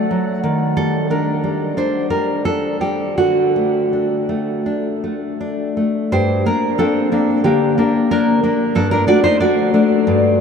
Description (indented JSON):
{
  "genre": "romantic piece for solo classical guitar",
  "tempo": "78-94 BPM",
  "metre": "4/4",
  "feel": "rubato",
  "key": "G minor",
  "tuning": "A4 = 440 Hz",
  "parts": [
    { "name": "nylon-string guitar", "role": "solo", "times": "0.0-10.4 s", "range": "G2 to D5", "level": "-15 LUFS", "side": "equal", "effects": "none" }
  ],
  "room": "wet huge ambient reverb, RT60 8.3 s",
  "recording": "in a vast, echoing space",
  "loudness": "-15 LUFS",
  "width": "side -6 dB against mid",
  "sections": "0.0-6.1 A section; 6.1-10.4 B section",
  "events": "none",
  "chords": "0.4 Ebmaj7; 3.2 D; 6.1 Gm; 8.8 D/G",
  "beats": "| 0.43 1.10 1.75 2.43 | 3.17 3.92 4.66 5.40 | 6.12 6.79 7.44 8.11 | 8.76 9.41 10.08"
}